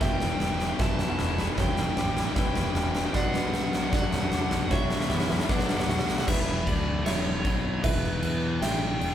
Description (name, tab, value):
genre	post-rock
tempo	77 BPM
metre	4/4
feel	straight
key	E dorian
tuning	A4 = 442 Hz
part	biting overdriven guitar	melody	0.0-9.1 s	B4 to A5	-33 LUFS	left 1 dB	none
part	pedal steel guitar	sustained chords	0.0-9.1 s	F#3 to E4	-40 LUFS	right 1 dB	none
part	felt-muted upright piano	arpeggios	0.0-9.1 s	B4 to E5	-38 LUFS	right 5 dB	none
part	twangy electric guitar	arpeggios	0.0-6.3 s	E2 to F#4	-37 LUFS	left 4 dB	none
part	sludgy distorted guitar	riff	0.0-6.3 s	B3 to F#4	-36 LUFS	right 8 dB	overdrive
part	thick fuzz guitar	riff	0.0-9.1 s	E2 to G3	-34 LUFS	left 8 dB	distortion
part	fuzz fingered electric bass	bass	0.0-9.1 s	E1 to F#2	-32 LUFS	equal	overdrive
part	huge arena drum kit	drums	0.0-9.1 s	crash cymbal, kick drum, snare drum, toms	-27 LUFS	equal	none
room	moderate large studio reverb, RT60 0.8 s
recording	band playing live in one room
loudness	-24 LUFS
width	side -10 dB against mid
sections	0.0-6.3 A section; 6.3-9.1 B section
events	build-up 0.0-6.3; drum fill 0.0-6.3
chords	0.0 Emadd9; 3.1 Bm; 6.3 Emadd9